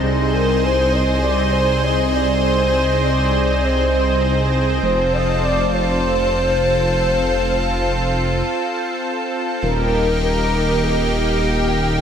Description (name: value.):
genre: synthwave.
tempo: 100 BPM.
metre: 4/4.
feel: straight.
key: unclear.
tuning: A4 = 440 Hz.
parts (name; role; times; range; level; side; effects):
expressive synth lead; melody; 0.0-12.0 s; G4 to Eb5; -21 LUFS; equal; lush chorus, slapback echo, ping-pong delay.
lush unison pad; sustained chords; 0.0-12.0 s; C3 to C5; -20 LUFS; right 1 dB; chorus.
dark detuned saw bass; bass; 0.0-12.0 s; Eb1 to C2; -20 LUFS; equal; none.
room: wet lush hall reverb, RT60 2.6 s.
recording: big arena sound.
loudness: -16 LUFS.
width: side -8 dB against mid.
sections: 0.0-9.6 A section; 9.6-12.0 B section.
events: break 8.4-9.6.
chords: 0.0 Ab/C; 4.8 F; 9.6 Eb.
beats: | 0.03 0.63 1.23 1.83 | 2.43 3.03 3.63 4.23 | 4.83 5.43 6.03 6.63 | 7.23 7.83 8.43 9.03 | 9.63 10.23 10.83 11.43.